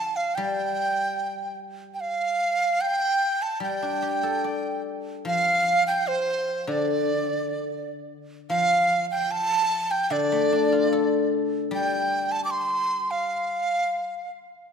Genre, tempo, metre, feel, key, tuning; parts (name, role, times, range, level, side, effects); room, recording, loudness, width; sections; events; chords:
chinese traditional, Chinese chamber ensemble; 75 BPM; 4/4; straight; D yu mode; A4 = 440 Hz
breathy mellow dizi; melody; 0.0-14.3 s; C5 to D6; -24 LUFS; right 2 dB
guzheng; accompaniment; 0.0-14.1 s; D3 to D5; -27 LUFS; left 5 dB
wet concert hall reverb, RT60 2.4 s; -22 LUFS; side -6 dB against mid
0.0-14.7 A section